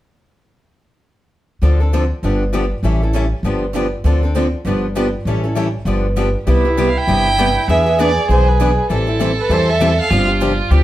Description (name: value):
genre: acoustic string swing (jazz manouche)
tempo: 198 BPM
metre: 4/4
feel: swing 58% on 8ths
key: C major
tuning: A4 = 440 Hz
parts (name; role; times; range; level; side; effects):
- picked acoustic archtop guitar; accompaniment; 1.6-10.8 s; C3 to B4; -24 LUFS; right 4 dB; none
- picked steel-string acoustic guitar; accompaniment; 1.6-10.8 s; C3 to A4; -20 LUFS; left 3 dB; none
- upright bass; bass; 1.6-10.8 s; G1 to E2; -17 LUFS; equal; none
- warm violin; second line; 6.5-10.8 s; E4 to A4; -20 LUFS; right 3 dB; none
- warm violin; melody; 6.9-10.3 s; B4 to G5; -18 LUFS; right 2 dB; none
room: wet studio reverb, RT60 0.7 s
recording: heard from further back in the room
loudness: -14 LUFS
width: side -14 dB against mid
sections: 1.6-6.5 A section; 6.5-10.8 B section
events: none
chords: 1.6 Dm7; 2.2 G7; 2.8 A7; 3.4 G7; 4.0 Dm7; 4.7 G7; 5.3 A7; 5.9 G7; 6.5 Cmaj7; 7.7 E7; 8.9 Am7; 10.1 G7sus4